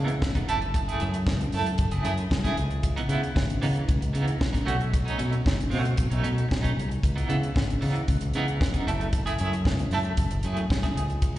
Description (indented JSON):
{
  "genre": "disco",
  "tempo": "114 BPM",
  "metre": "4/4",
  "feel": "straight",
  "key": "unclear",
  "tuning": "A4 = 442 Hz",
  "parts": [
    { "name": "clean electric guitar", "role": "accompaniment", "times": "0.0-11.4 s", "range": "E3 to A4", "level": "-31 LUFS", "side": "right 3 dB", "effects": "tremolo, slapback echo" },
    { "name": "overdriven fingered electric bass", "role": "bass", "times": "0.0-11.4 s", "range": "E#1 to C#3", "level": "-27 LUFS", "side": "equal", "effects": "none" },
    { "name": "tight funk drum kit", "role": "drums", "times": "0.1-11.4 s", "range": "hi-hat, kick drum, snare drum", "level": "-27 LUFS", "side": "equal", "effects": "slapback echo" }
  ],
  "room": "light reverb, small room ambience",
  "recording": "live gig heard through the venue's PA, recital hall reverb, nothing above 10.6 kHz",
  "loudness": "-23 LUFS",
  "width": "side -14 dB against mid",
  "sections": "0.0-11.4 A section",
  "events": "none",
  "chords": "0.5 F#m9; 2.6 C#m9; 4.7 B9; 7.0 C#m9; 8.9 F#m9"
}